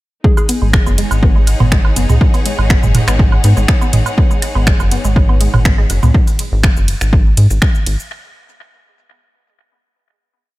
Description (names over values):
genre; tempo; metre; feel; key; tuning
minimal techno; 122 BPM; 4/4; swing 53% on 16ths; G# minor; A4 = 439 Hz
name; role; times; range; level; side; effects
hollow square pluck; melody; 0.2-0.4 s; G#4; -26 LUFS; equal; chorus, analog delay
resonant blip pluck; riff; 0.2-6.1 s; G#3 to B3; -24 LUFS; left 1 dB; wide subtle chorus, sidechain pumping, tape echo
electronic kick drum; drums; 0.2-7.7 s; none; -12 LUFS; equal; overdrive
clear studio string section; texture; 0.2-6.1 s; D#4 to F#5; -25 LUFS; left 1 dB; sidechain pumping
house drum kit; drums; 0.4-8.1 s; finger snaps, hi-hat, ride cymbal, shaker; -21 LUFS; right 1 dB; overdrive, analog delay
electronic woodblock and toms; percussion; 0.4-6.1 s; none; -18 LUFS; right 3 dB; tape echo
rubbery square bass; bass; 0.6-8.0 s; F#1 to G#2; -14 LUFS; equal; sidechain pumping
room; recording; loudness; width
digital ambience; echo-heavy mix; -10 LUFS; side -18 dB against mid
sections
0.2-8.1 drop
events
drop 0.2-8.1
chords
0.2 G#m7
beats
| 0.24 0.73 1.23 1.72 | 2.21 2.70 3.19 3.69 | 4.18 4.67 5.16 5.65 | 6.14 6.64 7.13 7.62